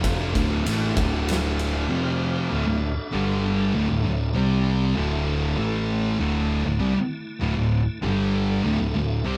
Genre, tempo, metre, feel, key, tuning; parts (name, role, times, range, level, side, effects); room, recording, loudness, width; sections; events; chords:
stoner and doom metal; 98 BPM; 4/4; straight; D minor; A4 = 439 Hz
tonewheel organ; sustained chords; 0.0-9.4 s; D3 to G5; -37 LUFS; equal; slow rotary speaker, overdrive, chorus vibrato
thick fuzz guitar; riff; 0.0-9.4 s; D2 to C4; -29 LUFS; equal; distortion
thick fuzz guitar; riff; 0.0-9.4 s; D2 to C4; -30 LUFS; equal; distortion
thick fuzz guitar; riff; 0.0-9.4 s; D2 to C4; -31 LUFS; equal; distortion
picked electric bass; bass; 0.0-9.4 s; D1 to C2; -30 LUFS; equal; overdrive
oversized low-tuned drum kit; drums; 0.0-1.7 s; kick drum, ride cymbal, snare drum; -32 LUFS; equal
light reverb; band playing live in one room; -24 LUFS; mono
0.0-2.5 A section; 2.5-9.4 B section
0.0 Dm; 1.9 F5; 2.5 D5; 3.1 G5; 3.7 D5; 4.3 C5; 5.0 D5; 5.6 A5; 6.2 D5; 8.0 G5; 8.6 D5